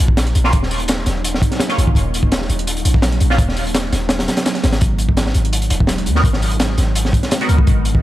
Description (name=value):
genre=drum and bass, jungle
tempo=168 BPM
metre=4/4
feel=straight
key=Eb minor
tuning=A4 = 440 Hz
part: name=ethereal airy pad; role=sustained chords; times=0.0-8.0 s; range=Gb3 to Eb4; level=-25 LUFS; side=right 1 dB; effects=ensemble chorus, built-in reverb
part: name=warm 808-style bass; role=bass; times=0.0-8.0 s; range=Eb1 to Eb2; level=-17 LUFS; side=equal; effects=none
part: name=crunchy breakbeat drum kit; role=drums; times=0.0-8.0 s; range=hi-hat, kick drum, snare drum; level=-17 LUFS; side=equal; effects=none
part: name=sub drop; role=sound effects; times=0.0-0.5 s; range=none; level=barely audible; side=none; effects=none
part: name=dusty soul sampler-style drum kit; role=drums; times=0.2-7.9 s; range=hi-hat, snare drum, tambourine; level=-29 LUFS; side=equal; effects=overdrive, high-pass filter on perc, high-pass filter on snare, high-pass filter on hats
part: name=band-passed chord stab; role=stabs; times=0.4-3.4, 6.2-8.0 s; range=Gb3 to Bb4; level=-24 LUFS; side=right 1 dB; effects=phaser, ensemble chorus, vintage 12-bit sampler grit, dub echo
room=little or no reverb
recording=none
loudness=-14 LUFS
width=side -15 dB against mid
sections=0.0-8.0 A section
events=impact 0.0-0.5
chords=0.0 Ebm7; 4.8 Abm7